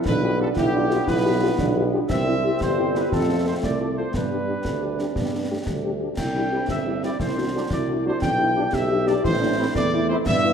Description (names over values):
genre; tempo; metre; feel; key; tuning
military-style march for wind band; 118 BPM (dotted quarters); 6/8; straight; unclear; A4 = 440 Hz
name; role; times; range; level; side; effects
mellow euphonium; second line; 0.0-10.5 s; G3 to G4; -26 LUFS; right 2 dB; none
warm trombone section; sustained chords; 0.0-10.2 s; E3 to E4; -32 LUFS; right 2 dB; none
mellow trumpet section; melody; 0.1-10.5 s; G4 to G5; -27 LUFS; equal; none
warm tuba; bass; 0.1-10.5 s; G1 to G2; -26 LUFS; right 1 dB; none
concert snare drum, concert bass drum and clash cymbals; drums; 0.1-10.4 s; none; -29 LUFS; left 1 dB; none
mellow French horn section; accompaniment; 0.2-10.5 s; G3 to A4; -28 LUFS; left 5 dB; none
room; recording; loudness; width
wet scoring stage reverb, RT60 1.7 s; dark, warm production; -20 LUFS; side -7 dB against mid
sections
0.0-10.5 A section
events
none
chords
0.1 G7/B; 2.1 C; 3.1 F; 4.1 G; 6.2 C; 7.2 D7/C; 8.2 G/B; 9.2 Am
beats
| 0.06 0.57 | 1.08 1.59 | 2.10 2.61 | 3.12 3.63 | 4.14 4.65 | 5.16 5.67 | 6.18 6.69 | 7.20 7.71 | 8.22 8.73 | 9.24 9.75 | 10.26